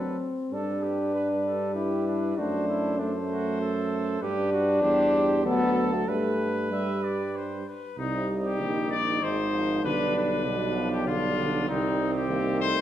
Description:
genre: classical, brass quintet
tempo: 97 BPM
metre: 3/4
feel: straight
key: G major, C minor from 8.0 s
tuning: A4 = 440 Hz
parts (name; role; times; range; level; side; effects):
- clear trumpet; melody; 0.0-12.8 s; Eb4 to E5; -32 LUFS; left 5 dB; none
- bright trumpet; second line; 0.0-12.8 s; C4 to B4; -34 LUFS; right 5 dB; none
- clear French horn; accompaniment; 0.0-12.8 s; F3 to E4; -28 LUFS; left 2 dB; none
- clear trombone; accompaniment; 0.0-12.8 s; B2 to A3; -32 LUFS; right 2 dB; none
- clear tuba; bass; 0.0-12.8 s; Ab1 to G2; -31 LUFS; right 3 dB; none
room: wet recital hall reverb, RT60 1.4 s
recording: dark, warm production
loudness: -24 LUFS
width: side -11 dB against mid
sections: 0.0-8.0 A section; 8.0-12.8 B section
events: none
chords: 0.0 D; 0.5 G; 2.4 D7/F#; 4.2 G; 4.8 C/E; 5.5 D; 6.1 G; 8.0 Cm; 9.2 Fm/Ab; 9.8 G7/B; 11.7 Cm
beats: | 0.52 1.15 1.77 | 2.38 3.00 3.61 | 4.22 4.83 5.45 | 6.08 6.72 7.35 | 7.98 8.61 9.22 | 9.84 10.46 11.07 | 11.68 12.30

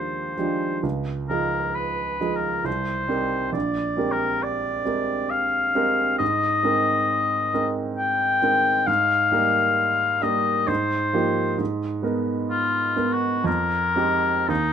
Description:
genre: classical, impressionist duo for oboe and grand piano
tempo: 66 BPM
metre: 3/4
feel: rubato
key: unclear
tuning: A4 = 440 Hz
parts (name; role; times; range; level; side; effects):
- clear oboe; melody; 0.0-14.7 s; Eb4 to G5; -22 LUFS; left 3 dB; none
- clear baby grand piano; accompaniment; 0.0-14.7 s; Bb1 to Bb4; -25 LUFS; right 4 dB; none
room: light reverb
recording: none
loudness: -20 LUFS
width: side -8 dB against mid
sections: 0.0-14.7 A section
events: none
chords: 0.0 Fm13/Eb; 0.8 Dbadd9; 2.7 Cm7; 3.5 Bb13; 6.2 Abadd9; 8.9 Ebadd9/Ab; 10.7 Fm11/Ab; 11.6 Abmadd9; 13.5 Fm11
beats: | 0.84 1.76 2.66 | 3.54 4.43 5.31 | 6.21 7.10 7.99 | 8.88 9.78 10.69 | 11.60 12.51 13.47 | 14.50

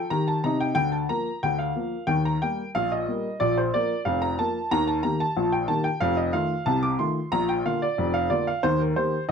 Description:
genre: ragtime piano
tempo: 92 BPM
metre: 2/4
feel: straight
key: Bb major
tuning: A4 = 440 Hz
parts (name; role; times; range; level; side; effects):
- clear upright piano; solo; 0.0-9.3 s; F1 to D6; -22 LUFS; equal; none
room: moderate studio ambience, RT60 0.5 s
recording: dark, warm production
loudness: -22 LUFS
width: side -6 dB against mid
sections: 0.0-9.3 A section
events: none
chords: 0.0 Eb; 0.8 Bb/D; 2.1 Eb; 3.4 Bb5; 4.7 Eb; 6.0 F7; 7.3 Bb; 8.6 Eb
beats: 0.12 | 0.78 1.43 | 2.09 2.75 | 3.40 4.06 | 4.71 5.37 | 6.02 6.68 | 7.34 7.99 | 8.65 9.30

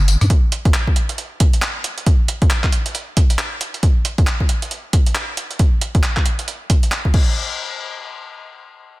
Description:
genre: UK garage, two-step garage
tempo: 136 BPM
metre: 4/4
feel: swing 60% on 16ths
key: none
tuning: none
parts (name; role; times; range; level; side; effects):
- breakbeat sampler-style drum kit; drums; 0.1-7.2 s; crash cymbal, handclaps, hi-hat, rim click, tambourine; -23 LUFS; right 1 dB; studio reverb
- electronic kick drum; drums; 0.3-7.2 s; none; -15 LUFS; equal; studio reverb
room: digital ambience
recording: dense, heavily limited modern master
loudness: -15 LUFS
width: side -20 dB against mid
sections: 0.0-7.4 A section; 7.4-9.0 B section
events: none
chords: none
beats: | 0.30 0.74 1.18 1.62 | 2.06 2.50 2.95 3.39 | 3.83 4.27 4.71 5.15 | 5.59 6.04 6.48 6.92

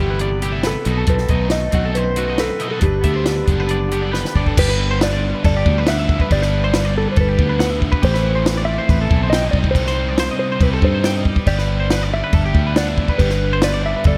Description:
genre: math rock and midwest emo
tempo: 139 BPM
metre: 4/4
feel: straight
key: G major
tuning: A4 = 440 Hz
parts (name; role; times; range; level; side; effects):
- mellow electric guitar; melody; 0.0-14.2 s; G4 to E5; -25 LUFS; equal; slapback echo
- clean electric guitar; accompaniment; 0.0-4.5 s; F#2 to G4; -32 LUFS; equal; spring reverb, slapback echo
- twelve-string electric guitar; arpeggios; 0.0-14.2 s; F#4 to G5; -28 LUFS; equal; slapback echo
- cranked stack guitar; riff; 0.0-14.2 s; G2 to E4; -28 LUFS; equal; overdrive, slapback echo
- fingered electric bass; bass; 0.0-14.2 s; F#1 to G2; -22 LUFS; equal; none
- compact cocktail drum kit; drums; 0.2-14.2 s; crash cymbal, hi-hat, kick drum, snare drum; -22 LUFS; equal; none
room: light reverb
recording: none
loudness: -17 LUFS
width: mono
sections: 0.0-4.6 A section; 4.6-14.2 B section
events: drum fill 4.1-4.6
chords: 0.0 Am9; 0.9 B7b9; 2.8 Gmaj7; 4.6 G; 8.0 Am7; 9.5 Cm6; 11.5 G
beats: 0.20 0.64 | 1.08 1.52 1.96 2.39 | 2.83 3.27 3.70 4.14 | 4.57 5.01 5.44 5.87 | 6.30 6.74 7.17 7.60 | 8.03 8.46 8.89 9.32 | 9.75 10.18 10.61 11.04 | 11.47 11.90 12.33 12.76 | 13.19 13.62 14.05

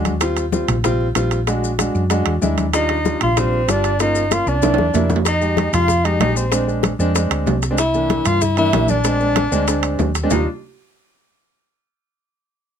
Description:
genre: Afro-Cuban jazz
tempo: 190 BPM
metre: 4/4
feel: straight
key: Eb major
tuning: A4 = 435 Hz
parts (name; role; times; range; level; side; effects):
- warm concert grand piano; accompaniment; 0.0-10.5 s; E3 to G4; -22 LUFS; equal; none
- hollow-body short-scale fingered electric bass; bass; 0.0-10.5 s; G1 to G2; -21 LUFS; equal; none
- bongos; percussion; 0.1-10.4 s; none; -25 LUFS; left 11 dB; none
- congas; percussion; 0.1-10.4 s; none; -26 LUFS; left 3 dB; none
- maracas; percussion; 0.1-10.4 s; none; -30 LUFS; left 8 dB; none
- timbales; percussion; 0.1-10.4 s; none; -23 LUFS; right 10 dB; none
- warm tenor saxophone; melody; 2.7-10.5 s; C4 to F4; -20 LUFS; left 5 dB; none
- breathy silver concert flute; second line; 2.7-10.5 s; C5 to F5; -24 LUFS; right 8 dB; none
room: light reverb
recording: close, detailed microphones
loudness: -15 LUFS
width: side -8 dB against mid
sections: 0.0-5.3 A section; 5.3-10.3 B section; 10.3-11.6 C section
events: drum fill 4.6-5.3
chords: 0.2 Eb6; 1.5 Bbaug7; 2.7 Ebmaj7; 4.0 Gm7b5; 4.6 C7; 5.3 Fm9; 6.5 Bb9; 7.8 C9; 9.0 Bb9; 10.3 Ebmaj7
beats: | 0.21 0.53 0.84 1.16 | 1.47 1.79 2.10 2.42 | 2.73 3.05 3.37 3.68 | 4.00 4.31 4.63 4.94 | 5.26 5.57 5.89 6.20 | 6.52 6.84 7.15 7.47 | 7.78 8.10 8.42 8.73 | 9.05 9.37 9.68 10.00 | 10.31

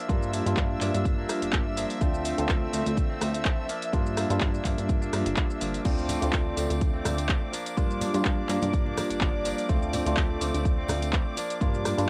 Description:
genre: filtered disco house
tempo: 125 BPM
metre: 4/4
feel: swing 54% on 16ths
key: unclear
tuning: A4 = 440 Hz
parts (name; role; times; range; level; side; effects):
- dark chamber string section; sustained chords; 0.0-12.1 s; D5 to E6; -38 LUFS; equal; sidechain pumping
- direct-recorded clean electric guitar; riff; 0.0-12.1 s; F3 to D4; -39 LUFS; equal; vintage 12-bit sampler grit, sidechain pumping
- bright tine electric piano; accompaniment; 0.1-12.1 s; G3 to F4; -33 LUFS; equal; phaser, sidechain pumping
- plucky analog bass; bass; 0.1-12.1 s; G1 to G2; -34 LUFS; equal; sidechain pumping
- electronic kick drum; drums; 0.1-11.7 s; none; -29 LUFS; equal; cassette tape
- punchy analog drum machine; drums; 0.1-12.1 s; crash cymbal, handclaps, hi-hat, rim click, shaker; -35 LUFS; equal; sidechain pumping on hats, cassette tape, sidechain pumping on perc, sidechain pumping on cymbals
- tambourine and congas; percussion; 5.8-12.1 s; none; -42 LUFS; equal; sidechain pumping on perc
room: light reverb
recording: home recording on cassette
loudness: -27 LUFS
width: mono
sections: 0.0-12.1 A section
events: none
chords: 0.0 Gm7; 2.0 Dm7; 3.7 Gm7; 5.9 Dm7; 7.5 Gm7; 9.7 Dm7; 11.4 Gm7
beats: | 0.09 0.57 1.05 1.53 | 2.01 2.49 2.97 3.45 | 3.93 4.41 4.89 5.37 | 5.85 6.33 6.81 7.29 | 7.77 8.25 8.73 9.21 | 9.69 10.17 10.65 11.13 | 11.61 12.09

